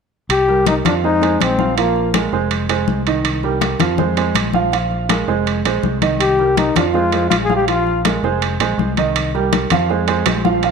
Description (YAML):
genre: latin, salsa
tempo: 162 BPM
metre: 4/4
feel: straight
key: unclear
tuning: A4 = 439 Hz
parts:
  - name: clear trombone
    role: melody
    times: 0.3-2.1, 6.2-8.0 s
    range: Bb3 to Ab4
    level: -17 LUFS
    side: left 4 dB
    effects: none
  - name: fingered electric bass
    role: bass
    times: 0.3-10.7 s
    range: F1 to F2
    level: -22 LUFS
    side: left 1 dB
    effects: none
  - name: congas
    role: percussion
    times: 0.3-10.7 s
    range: none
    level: -22 LUFS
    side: left 11 dB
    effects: none
  - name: timbales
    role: percussion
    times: 0.3-10.7 s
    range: none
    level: -22 LUFS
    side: right 11 dB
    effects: none
  - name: warm baby grand piano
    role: accompaniment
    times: 0.5-10.7 s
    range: Eb3 to F5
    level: -19 LUFS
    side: right 8 dB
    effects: none
room: moderate echo chamber reverb, RT60 1.5 s, studio reverb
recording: 1960s-style stereo with parts hard left and right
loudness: -14 LUFS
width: side -5 dB against mid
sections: 0.3-10.7 A section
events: none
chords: 0.3 C5; 1.0 Fm7; 1.8 Bb5; 2.5 Fm7; 3.2 Cm7; 4.0 Fm; 4.7 Bb5; 5.5 Fm7; 6.2 Cm7; 6.9 Fm; 7.7 Bb5; 8.4 Fm7; 9.2 Cm7; 9.9 Fm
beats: | 0.29 0.66 1.03 1.40 | 1.77 2.14 2.51 2.88 | 3.25 3.62 3.99 4.36 | 4.73 5.09 5.46 5.83 | 6.20 6.57 6.94 7.31 | 7.68 8.05 8.41 8.78 | 9.15 9.52 9.89 10.26 | 10.63